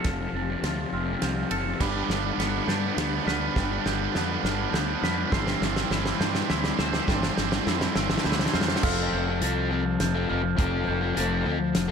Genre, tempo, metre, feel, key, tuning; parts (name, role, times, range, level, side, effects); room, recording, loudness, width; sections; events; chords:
post-rock; 103 BPM; 3/4; straight; F lydian; A4 = 443 Hz
pedal steel guitar; sustained chords; 0.0-11.9 s; E4 to C6; -40 LUFS; right 6 dB
glockenspiel with soft plastic mallets; arpeggios; 0.0-11.7 s; D6 to A6; -34 LUFS; right 14 dB; analog delay
twangy electric guitar; arpeggios; 0.0-8.8 s; F3 to C5; -34 LUFS; right 1 dB; wide subtle chorus, analog delay
crunchy overdriven guitar; riff; 0.0-11.9 s; F2 to A4; -29 LUFS; left 8 dB
fuzz fingered electric bass; bass; 0.0-11.9 s; F1 to G2; -30 LUFS; right 1 dB; overdrive
loose indie drum kit; drums; 0.0-11.9 s; crash cymbal, hi-hat, kick drum, ride cymbal, snare drum; -29 LUFS; equal
distorted electric guitar; riff; 1.8-8.8 s; B3 to D4; -30 LUFS; right 15 dB; distortion
light reverb, studio reverb; -23 LUFS; side -6 dB against mid
0.0-8.8 A section; 8.8-11.9 B section
build-up 0.0-8.8; drum fill 0.0-8.8
0.0 F; 1.8 G; 5.3 Cadd9/G; 8.8 F